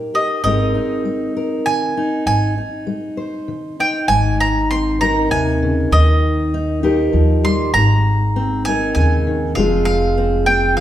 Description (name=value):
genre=acoustic folk duo or small band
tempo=99 BPM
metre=3/4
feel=straight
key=Ab major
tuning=A4 = 440 Hz
part: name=fingerpicked steel-string acoustic guitar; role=accompaniment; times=0.0-10.8 s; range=Ab2 to C5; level=-19 LUFS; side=left 1 dB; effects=none
part: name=bowl-back mandolin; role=melody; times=0.1-10.8 s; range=Eb5 to C6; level=-19 LUFS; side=right 2 dB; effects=none
part: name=upright bass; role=bass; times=0.4-10.8 s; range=F1 to Eb2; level=-18 LUFS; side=equal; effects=none
room=wet recital hall reverb, RT60 1.4 s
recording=recorded in a church or concert hall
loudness=-14 LUFS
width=side -12 dB against mid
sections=0.0-4.1 A section; 4.1-10.8 B section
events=none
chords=0.4 Abadd9; 2.3 Ab; 4.1 Abadd9; 5.9 Eb; 7.7 Abadd9; 9.6 Fm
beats=| 0.43 1.04 1.65 | 2.26 2.87 3.48 | 4.09 4.70 5.31 | 5.91 6.52 7.13 | 7.74 8.35 8.96 | 9.56 10.17 10.78